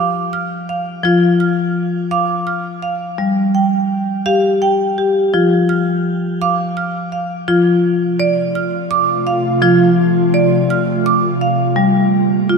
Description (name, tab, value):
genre	world meditative, meditative tuned percussion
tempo	56 BPM (dotted quarters)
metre	6/8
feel	straight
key	F major pentatonic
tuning	A4 = 440 Hz
part	marimba with hard mallets	arpeggios	0.0-12.6 s	F3 to F6	-14 LUFS	equal	shimmer reverb
part	ethereal airy pad	sustained chords	8.1-12.6 s	C3 to G4	-17 LUFS	right 1 dB	ensemble chorus, built-in reverb, shimmer reverb
room	wet lush hall reverb, RT60 2.6 s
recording	none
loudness	-13 LUFS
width	side -5 dB against mid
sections	0.0-7.5 A section; 7.5-12.6 B section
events	none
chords	0.0 Dm/F; 3.2 Fsus2/G; 5.3 Dmadd11/F; 7.5 F; 11.8 Gm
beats	| 1.04 2.11 | 3.18 4.26 | 5.33 6.40 | 7.48 8.55 | 9.62 10.69 | 11.77